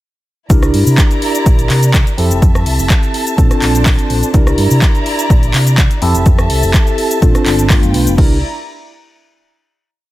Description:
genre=filtered disco house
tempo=125 BPM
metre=4/4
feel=straight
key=C mixolydian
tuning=A4 = 441 Hz
part: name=tine electric piano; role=accompaniment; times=0.5-8.4 s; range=A3 to Bb4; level=-17 LUFS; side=equal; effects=medium stereo tremolo, phaser, vintage 12-bit sampler grit, sidechain pumping
part: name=rich studio violin section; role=sustained chords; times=0.5-8.4 s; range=D4 to Bb5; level=-22 LUFS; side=right 1 dB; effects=vintage 12-bit sampler grit, sidechain pumping
part: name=hollow-body short-scale fingered electric bass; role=bass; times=0.5-8.4 s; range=F1 to C3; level=-14 LUFS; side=equal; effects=sidechain pumping
part: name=electronic kick drum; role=drums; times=0.5-8.3 s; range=none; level=-11 LUFS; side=equal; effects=overdrive
part: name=punchy analog drum machine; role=drums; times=0.5-8.3 s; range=crash cymbal, handclaps, hi-hat, rim click, shaker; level=-20 LUFS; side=left 1 dB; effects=overdrive, sidechain pumping on hats, sidechain pumping on perc, sidechain pumping on cymbals
room=digital ambience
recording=none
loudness=-9 LUFS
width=side -16 dB against mid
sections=0.5-8.2 drop; 8.2-10.1 final chord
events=drop 0.5-8.2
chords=0.5 C9; 2.2 Fmaj7; 3.4 Bbmaj9; 4.3 C9; 6.0 Fmaj7; 7.2 Bbmaj9; 7.7 G7; 8.2 C9

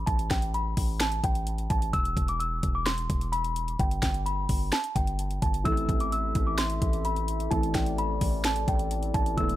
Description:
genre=hip hop, trap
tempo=129 BPM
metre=4/4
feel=half-time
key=A minor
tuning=A4 = 436 Hz
part: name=small celesta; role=melody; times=0.0-9.6 s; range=G5 to E6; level=-31 LUFS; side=equal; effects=low-pass filter, ping-pong delay
part: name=distorted 808-style bass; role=bass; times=0.0-9.6 s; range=E1 to A1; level=-30 LUFS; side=equal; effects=distortion
part: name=trap drum kit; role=drums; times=0.1-9.6 s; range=finger snaps, hi-hat, kick drum, snare drum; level=-28 LUFS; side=equal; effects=none
part: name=dark grand piano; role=accompaniment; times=5.6-9.6 s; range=E3 to A4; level=-33 LUFS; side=right 1 dB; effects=low-pass filter
part: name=glass harmonica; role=sustained chords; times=5.8-9.6 s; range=B3 to E5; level=-36 LUFS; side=left 2 dB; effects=stereo widening
room=little or no reverb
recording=none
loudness=-25 LUFS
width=side -14 dB against mid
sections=0.0-9.6 A section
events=none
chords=0.0 N.C.; 1.9 E5; 3.8 G; 5.7 Am

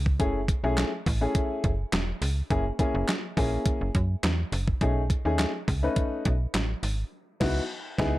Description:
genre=early-eighties boogie funk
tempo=104 BPM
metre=4/4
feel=straight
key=F# dorian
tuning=A4 = 440 Hz
part: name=slap-like FM bass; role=bass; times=0.0-8.2 s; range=E1 to F#2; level=-27 LUFS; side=equal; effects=none
part: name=clean 12-bit digital drum machine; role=drums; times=0.1-8.2 s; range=crash cymbal, handclaps, hi-hat, kick drum, snare drum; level=-28 LUFS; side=equal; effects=overdrive
part: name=warm grand piano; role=accompaniment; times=0.2-8.2 s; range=A3 to B4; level=-29 LUFS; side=left 2 dB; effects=none
room=digital ambience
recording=dark, warm production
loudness=-24 LUFS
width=side -17 dB against mid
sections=0.0-8.2 A section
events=band accent 7.1-8.2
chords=0.2 F#m7; 2.5 F#7; 4.8 B13; 7.1 C#m11

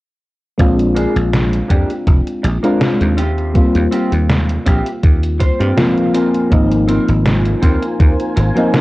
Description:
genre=vaporwave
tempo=81 BPM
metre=4/4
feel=swing 54% on 16ths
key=unclear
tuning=A4 = 440 Hz
part: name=mellow FM electric piano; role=accompaniment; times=0.6-8.8 s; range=F3 to F4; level=-17 LUFS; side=left 1 dB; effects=wide subtle chorus, tape echo
part: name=dry thumbed slap bass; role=bass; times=0.6-8.5 s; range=F1 to G2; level=-16 LUFS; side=equal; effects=tube saturation
part: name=detuned 8-bit digital drum machine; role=drums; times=0.6-8.8 s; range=hi-hat, snare drum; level=-20 LUFS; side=equal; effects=vintage 12-bit sampler grit
part: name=electronic kick drum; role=drums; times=0.6-8.2 s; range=none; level=-12 LUFS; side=equal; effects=vintage 12-bit sampler grit
part: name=electric guitar through a small old amp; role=riff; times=1.0-8.7 s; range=Bb3 to Ab5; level=-23 LUFS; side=right 1 dB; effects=lush chorus, low-pass filter, tape echo
part: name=soft string machine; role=sustained chords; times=7.1-8.8 s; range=F4 to Ab5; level=-24 LUFS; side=equal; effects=phaser, ensemble chorus
room=light reverb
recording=worn, warbling old tape, cassette tape, warbly pitch drift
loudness=-12 LUFS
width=side -19 dB against mid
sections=0.6-8.8 A section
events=clean electric guitar fill 5.0-6.5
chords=0.6 Bb7; 3.2 Eb69; 6.1 Ab69

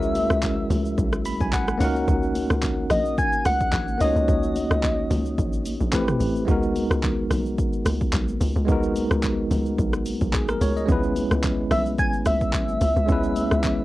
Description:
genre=amapiano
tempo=109 BPM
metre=4/4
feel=swing 55% on 16ths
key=C# dorian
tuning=A4 = 440 Hz
part: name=soft struck synth lead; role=melody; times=0.0-5.7, 11.7-13.8 s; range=D#5 to G#5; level=-25 LUFS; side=left 1 dB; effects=chorus, analog delay
part: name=bell-like tine electric piano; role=accompaniment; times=0.0-13.8 s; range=G#3 to B5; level=-25 LUFS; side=equal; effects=fast stereo tremolo, cassette tape
part: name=tight log drum bass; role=bass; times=0.0-13.8 s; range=A1 to C#2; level=-26 LUFS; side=equal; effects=none
part: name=deep house drum kit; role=drums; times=0.0-13.8 s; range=handclaps, hi-hat, kick drum, rim click, shaker, toms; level=-26 LUFS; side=equal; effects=cassette tape
part: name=congas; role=percussion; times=0.1-13.8 s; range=none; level=-35 LUFS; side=left 1 dB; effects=none
room=light reverb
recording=home recording on cassette, faint mains hum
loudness=-20 LUFS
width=side -17 dB against mid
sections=0.0-13.8 A section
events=tine electric piano fill 1.0-2.1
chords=0.0 F#9sus4; 1.8 D#m7; 5.9 Am9; 6.5 G#m9; 10.9 C#m7

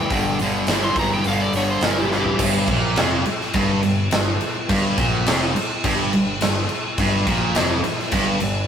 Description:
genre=blues rock power trio and southern rock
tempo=105 BPM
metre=4/4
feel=straight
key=G minor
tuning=A4 = 440 Hz
part: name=overdriven slide guitar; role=melody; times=0.0-2.4 s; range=G4 to C6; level=-24 LUFS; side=equal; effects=none
part: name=sludgy distorted guitar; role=riff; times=0.0-8.6 s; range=F2 to E3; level=-20 LUFS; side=equal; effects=overdrive
part: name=growling picked electric bass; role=bass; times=0.0-8.7 s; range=F1 to Bb1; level=-26 LUFS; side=equal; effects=overdrive
part: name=big rock drum kit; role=drums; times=0.1-8.5 s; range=crash cymbal, hi-hat, kick drum, snare drum, toms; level=-22 LUFS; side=equal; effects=none
room=light reverb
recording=rough rehearsal-room recording, tube saturation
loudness=-18 LUFS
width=side -8 dB against mid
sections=0.0-2.4 A section; 2.4-8.7 B section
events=electric slide guitar solo 0.0-2.4; drum fill 2.1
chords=0.0 G5; 2.4 Gm

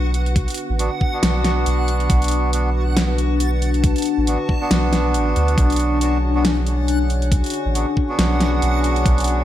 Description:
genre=deep dubstep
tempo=138 BPM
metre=4/4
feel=swing 56% on 16ths, half-time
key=B dorian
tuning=A4 = 440 Hz
part: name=dark analog pad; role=sustained chords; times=0.0-9.4 s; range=D4 to G#5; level=-24 LUFS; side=left 4 dB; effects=chorus, phaser
part: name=soft dub sub bass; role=bass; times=0.0-9.4 s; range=A1 to D2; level=-19 LUFS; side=equal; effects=none
part: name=backwards swelling texture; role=texture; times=0.0-9.4 s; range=F#4 to A5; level=-29 LUFS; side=left 1 dB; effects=built-in reverb
part: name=dubstep drum kit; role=drums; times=0.1-9.4 s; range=hi-hat, snare drum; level=-23 LUFS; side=equal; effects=none
part: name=electronic kick drum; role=drums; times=0.4-9.2 s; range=none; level=-18 LUFS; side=equal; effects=none
part: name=melodica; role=stabs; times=0.8-9.4 s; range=B3 to F#4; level=-25 LUFS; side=right 2 dB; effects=low-pass filter, dub echo
room=light reverb, digital ambience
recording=none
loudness=-16 LUFS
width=side -12 dB against mid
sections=0.0-9.4 A section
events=none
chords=0.0 Bm

